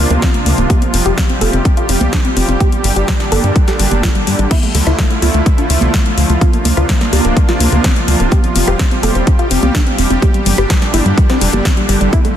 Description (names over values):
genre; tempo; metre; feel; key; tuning
progressive house; 126 BPM; 4/4; straight; unclear; A4 = 441 Hz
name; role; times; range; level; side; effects
supersaw pad; sustained chords; 0.0-12.4 s; Bb2 to G4; -18 LUFS; right 1 dB; sidechain pumping, low-pass filter
tight sequenced synth; arpeggios; 0.0-12.3 s; G3 to A4; -19 LUFS; left 2 dB; chorus, cassette tape, sidechain pumping, dub echo
tight sequencer bass; bass; 0.0-12.1 s; D1 to G2; -15 LUFS; equal; sidechain pumping
house drum kit; drums; 0.1-12.3 s; crash cymbal, hi-hat, rim click, snare drum; -20 LUFS; left 2 dB; studio reverb
congas; percussion; 0.1-12.3 s; none; -23 LUFS; right 4 dB; sidechain pumping on perc
electronic kick drum; drums; 0.2-12.2 s; none; -13 LUFS; equal; studio reverb
room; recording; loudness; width
light reverb; dense, heavily limited modern master; -10 LUFS; side -10 dB against mid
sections
0.0-12.4 A section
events
none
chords
0.0 Bbadd9/D; 0.7 Fsus2; 2.6 Gm; 4.5 Dmadd9; 6.4 Bbadd9/D; 8.3 Fsus2; 10.2 Gm